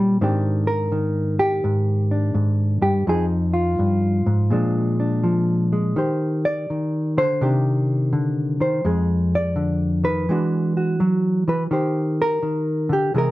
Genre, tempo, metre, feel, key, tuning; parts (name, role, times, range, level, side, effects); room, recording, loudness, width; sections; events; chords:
solo jazz; 84 BPM; 4/4; swing 66% on 8ths, rubato; Eb major; A4 = 440 Hz
hollow-body jazz guitar; solo; 0.0-13.3 s; F2 to D5; -18 LUFS; equal
moderate club reverb, RT60 0.6 s; -18 LUFS; side -17 dB against mid
0.0-13.3 A section
0.2 Abmaj9#11; 3.1 Fm7; 4.5 Bb7; 6.0 Eb6; 7.4 Cmadd9; 8.8 Fm7; 10.3 E9; 11.7 Eb6